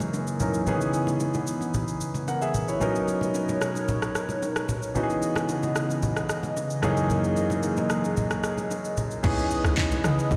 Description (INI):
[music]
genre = amapiano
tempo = 112 BPM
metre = 4/4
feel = straight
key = C# dorian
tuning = A4 = 440 Hz
[part]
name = warm grand piano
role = accompaniment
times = 0.0-10.4 s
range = F#2 to F#5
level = -30 LUFS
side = equal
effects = none
[part]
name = hollow soft pad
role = sustained chords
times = 0.0-10.4 s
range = F#2 to D#6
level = -32 LUFS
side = equal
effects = chorus, sidechain pumping
[part]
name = smooth R&B drum kit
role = drums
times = 0.0-10.4 s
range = crash cymbal, handclaps, kick drum, rim click, shaker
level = -35 LUFS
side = equal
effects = none
[part]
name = bongos and congas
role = percussion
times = 0.0-10.4 s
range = none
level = -34 LUFS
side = equal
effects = none
[part]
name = tight log drum bass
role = bass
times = 9.2-10.4 s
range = C#2 to C#3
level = -28 LUFS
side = equal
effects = none
[sound]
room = moderate lush hall reverb, RT60 2.6 s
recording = played on a big sound system in a bare room, stone room reverb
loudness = -26 LUFS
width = mono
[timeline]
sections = 0.0-9.2 A section; 9.2-10.4 B section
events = none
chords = 0.0 F#13; 0.7 C#m9; 2.8 Bmaj9; 5.0 C#m9; 6.8 F#13; 9.2 C#m9